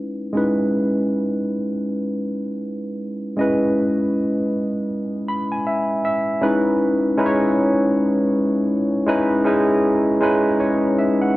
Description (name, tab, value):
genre	R&B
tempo	79 BPM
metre	4/4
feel	swing 61% on 16ths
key	C# minor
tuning	A4 = 439 Hz
part	barky tine electric piano	solo	0.0-11.4 s	G#3 to B5	-18 LUFS	equal	overdrive, lush chorus
room	light reverb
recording	worn, warbling old tape, cassette tape, warbly pitch drift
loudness	-18 LUFS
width	side -17 dB against mid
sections	0.0-6.4 A section; 6.4-11.4 B section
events	tine electric piano fill 4.9-6.4, 10.2-11.4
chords	0.0 C#m9